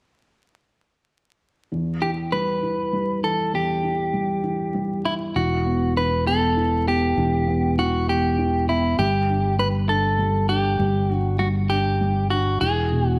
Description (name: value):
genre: six-eight pop ballad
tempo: 66 BPM (dotted quarters)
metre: 6/8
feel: straight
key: E minor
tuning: A4 = 440 Hz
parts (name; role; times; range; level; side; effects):
- felt-muted upright piano; accompaniment; 1.7-13.2 s; E2 to D4; -28 LUFS; equal; none
- clean electric guitar; melody; 2.0-13.2 s; E4 to B4; -25 LUFS; equal; none
- fingered electric bass; bass; 5.4-13.2 s; E1 to G1; -26 LUFS; equal; none
room: moderate echo chamber reverb, RT60 1.9 s, small room ambience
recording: vinyl crackle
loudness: -22 LUFS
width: mono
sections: 1.7-5.4 A section; 5.4-13.2 B section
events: none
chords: 1.7 Em; 5.4 Emadd9; 9.0 G5; 12.6 E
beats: | 1.71 2.62 | 3.53 4.44 | 5.36 6.27 | 7.18 8.08 | 8.98 9.89 | 10.79 11.70 | 12.61